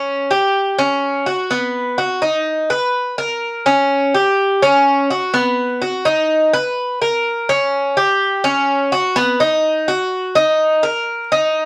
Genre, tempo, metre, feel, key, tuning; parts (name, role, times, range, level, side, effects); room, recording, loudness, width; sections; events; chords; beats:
latin; 125 BPM; 4/4; straight; A4 = 440 Hz
Cuban tres; solo; 0.0-11.7 s; B3 to B4; -17 LUFS; equal
moderate studio ambience, RT60 0.5 s; vinyl crackle; -17 LUFS; mono
0.0-9.2 A section; 9.2-11.7 B section
0.07 0.55 1.03 | 1.50 1.99 2.46 2.94 | 3.42 3.90 4.38 4.86 | 5.34 5.82 6.30 6.78 | 7.26 7.74 8.21 8.69 | 9.17 9.65 10.13 10.61 | 11.08 11.56